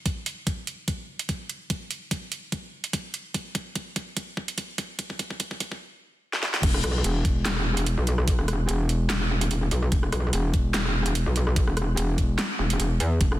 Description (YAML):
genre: heavy wobble dubstep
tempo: 146 BPM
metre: 4/4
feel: swing 54% on 16ths, half-time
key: unclear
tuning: A4 = 440 Hz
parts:
  - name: dubstep drum kit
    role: drums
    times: 0.1-13.4 s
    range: crash cymbal, handclaps, hi-hat, rim click, snare drum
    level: -30 LUFS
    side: right 1 dB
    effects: high-pass filter on hats, studio reverb, high-pass filter on snare, high-pass filter on cymbals
  - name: electronic kick drum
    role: drums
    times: 0.1-13.3 s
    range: none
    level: -27 LUFS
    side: equal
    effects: overdrive, studio reverb
  - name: metallic wobble bass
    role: bass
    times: 6.6-13.4 s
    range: E1 to E2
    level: -24 LUFS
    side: equal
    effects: chorus, overdrive
room: digital ambience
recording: dense, heavily limited modern master, high-pass filter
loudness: -24 LUFS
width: side -15 dB against mid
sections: 0.0-6.6 A section; 6.6-13.4 B section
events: build-up 0.0-6.6; drum fill 0.1-5.8, 6.3-6.6; drop 6.6-13.4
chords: none